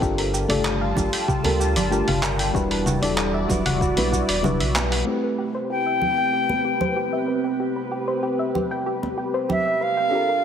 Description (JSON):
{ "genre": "sunset chillout", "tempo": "95 BPM", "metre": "4/4", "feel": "straight", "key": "A minor", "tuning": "A4 = 435 Hz", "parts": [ { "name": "mellow FM electric piano", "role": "accompaniment", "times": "0.0-10.4 s", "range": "G3 to B4", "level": "-28 LUFS", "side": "left 1 dB", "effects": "chorus, auto-pan, cassette tape, low-pass filter, ping-pong delay" }, { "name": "lush unison pad", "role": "sustained chords", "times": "0.0-10.4 s", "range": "G3 to A5", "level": "-28 LUFS", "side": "right 1 dB", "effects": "chorus, phaser" }, { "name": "soft round pluck", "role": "arpeggios", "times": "0.0-10.4 s", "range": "F#4 to G5", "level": "-28 LUFS", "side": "left 2 dB", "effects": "chorus, ping-pong delay" }, { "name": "round analog bass", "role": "bass", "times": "0.0-5.0 s", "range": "E1 to D2", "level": "-26 LUFS", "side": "equal", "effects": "none" }, { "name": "dusty soul sampler-style drum kit", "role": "drums", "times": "0.0-10.4 s", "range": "cabasa, congas, handclaps, hi-hat", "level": "-26 LUFS", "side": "equal", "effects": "overdrive, low-pass filter on perc, low-pass filter on hats, low-pass filter on snare, low-pass filter on room" }, { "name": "electronic kick drum", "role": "drums", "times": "0.0-4.3 s", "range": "none", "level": "-27 LUFS", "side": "equal", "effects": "overdrive" }, { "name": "congas", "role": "percussion", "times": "1.0-9.6 s", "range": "none", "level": "-30 LUFS", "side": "right 4 dB", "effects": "none" }, { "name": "silver concert flute", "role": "melody", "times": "5.7-10.4 s", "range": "E5 to G5", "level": "-22 LUFS", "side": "equal", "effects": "ping-pong delay" } ], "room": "moderate plate reverb, RT60 2.2 s", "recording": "heavily compressed radio sound", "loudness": "-20 LUFS", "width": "side -8 dB against mid", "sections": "0.0-5.1 A section; 5.1-10.4 B section", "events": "filter sweep on FM electric piano 5.1-10.4; filter sweep on synth pluck 5.1-10.4", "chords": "0.0 Gm9; 2.5 Em9; 5.1 Am9", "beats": "| 0.02 0.65 1.28 1.92 | 2.55 3.18 3.81 4.44 | 5.07 5.71 6.34 6.97 | 7.60 8.23 8.86 9.50 | 10.13" }